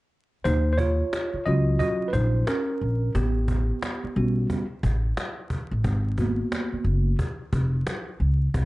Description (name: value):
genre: hip hop, jazz-hop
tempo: 89 BPM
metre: 4/4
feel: swing 63% on 16ths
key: unclear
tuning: A4 = 438 Hz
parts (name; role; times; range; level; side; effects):
- mellow tine electric piano; accompaniment; 0.4-7.2 s; Gb3 to Eb5; -26 LUFS; right 1 dB; medium stereo tremolo
- upright bass; bass; 0.5-8.7 s; F1 to Eb2; -23 LUFS; equal; none
- cajon; drums; 0.5-8.7 s; none; -30 LUFS; equal; none
room: little or no reverb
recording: vinyl crackle, nothing above 10.7 kHz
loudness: -23 LUFS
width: side -19 dB against mid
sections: 0.5-8.7 A section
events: tine electric piano solo 0.5-8.7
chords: 0.5 Ebm7; 3.1 A13; 5.8 Abm7